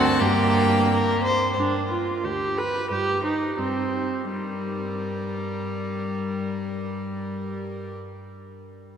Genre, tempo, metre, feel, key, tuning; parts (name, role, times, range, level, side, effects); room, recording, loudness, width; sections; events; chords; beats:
quick classical-period movement for string quartet; 82-91 BPM; 2/4; straight; G minor; A4 = 439 Hz
warm violin; melody; 0.0-8.0 s; D5 to A5; -32 LUFS; left 6 dB
warm violin; second line; 0.0-7.9 s; F#4 to C5; -30 LUFS; left 1 dB
warm viola; accompaniment; 0.0-8.0 s; G3 to B4; -25 LUFS; right 1 dB
warm cello; bass; 0.0-8.0 s; D2 to G2; -30 LUFS; right 2 dB
wet cathedral reverb, RT60 4.8 s; -22 LUFS; side -8 dB against mid
0.0-1.6 A section; 1.6-4.3 B section; 4.3-7.2 C section
slowing down 0.9-4.3
0.2 Gm; 1.6 G7; 2.9 Cm/G; 4.3 Gm
| 0.19 0.88 | 1.56 2.23 | 2.89 3.58 | 4.30 5.02 | 5.74 6.46